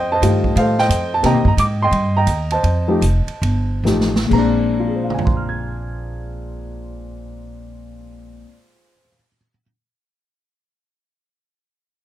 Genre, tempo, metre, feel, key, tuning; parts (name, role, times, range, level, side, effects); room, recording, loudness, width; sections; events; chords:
jazz piano trio; 125-179 BPM; 4/4; swing 64% on 8ths; Bb mixolydian; A4 = 439 Hz
warm baby grand piano; melody; 0.0-9.6 s; Bb2 to Ab6; -19 LUFS; left 1 dB
upright bass; bass; 0.0-8.4 s; F1 to C3; -20 LUFS; equal
swinging big-band drum kit; drums; 0.2-5.4 s; crash cymbal, hi-hat, kick drum, ride cymbal, snare drum, toms; -24 LUFS; right 2 dB
light reverb; dark, warm production; -15 LUFS; side -13 dB against mid
0.0-4.3 A section; 4.3-8.1 B section
slowing down 1.2-4.3; drum fill 3.8-4.3
0.0 F9; 1.2 Cm7; 2.6 F9; 4.3 Bb9